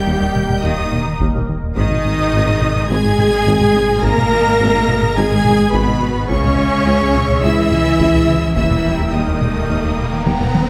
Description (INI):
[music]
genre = cinematic, hybrid orchestral and electronic film score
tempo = 106 BPM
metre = 4/4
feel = straight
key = G# harmonic minor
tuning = A4 = 440 Hz
[part]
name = clear symphonic violin section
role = melody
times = 0.0-10.7 s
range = A#5 to A#6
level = -28 LUFS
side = equal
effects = none
[part]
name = clear symphonic violin section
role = second line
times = 0.0-10.7 s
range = A#4 to A#5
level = -25 LUFS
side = equal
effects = none
[part]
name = bright symphonic viola section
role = accompaniment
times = 0.0-10.5 s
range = B3 to A#4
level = -26 LUFS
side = equal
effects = none
[part]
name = dark French horn section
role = sustained chords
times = 0.0-10.5 s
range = B3 to A#4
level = -23 LUFS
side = equal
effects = none
[part]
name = phased analog pad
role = sustained chords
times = 0.0-10.7 s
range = B2 to G5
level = -28 LUFS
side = equal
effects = phaser, chorus
[part]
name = clear studio cello section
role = bass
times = 0.0-10.5 s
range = B2 to A#3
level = -24 LUFS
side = equal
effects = none
[part]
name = warm sub bass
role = bass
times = 0.0-10.7 s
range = D#1 to C#2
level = -28 LUFS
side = equal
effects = none
[part]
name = round analog bass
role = riff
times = 0.1-10.6 s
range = C#2 to G#3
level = -26 LUFS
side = equal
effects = none
[part]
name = clear symphonic double bass section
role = bass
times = 0.1-10.6 s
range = G#1 to D#2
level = -26 LUFS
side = equal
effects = none
[part]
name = dark tuba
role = bass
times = 0.1-10.6 s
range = G#1 to D#2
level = -26 LUFS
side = equal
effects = none
[part]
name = taiko ensemble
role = drums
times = 0.4-10.7 s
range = none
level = -25 LUFS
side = equal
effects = none
[part]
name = riser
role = sound effects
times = 8.4-10.7 s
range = none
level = -29 LUFS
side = equal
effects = none
[sound]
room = wet scoring stage reverb, RT60 1.7 s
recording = none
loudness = -15 LUFS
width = mono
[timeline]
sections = 0.0-10.7 A section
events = riser 8.4-10.7; drum fill 10.3-10.7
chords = 0.0 D#; 1.8 G#m; 6.3 C#m; 8.6 D#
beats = 0.07 0.64 1.20 | 1.77 2.33 2.90 3.47 | 4.03 4.60 5.17 5.73 | 6.30 6.86 7.43 8.00 | 8.56 9.13 9.69 10.26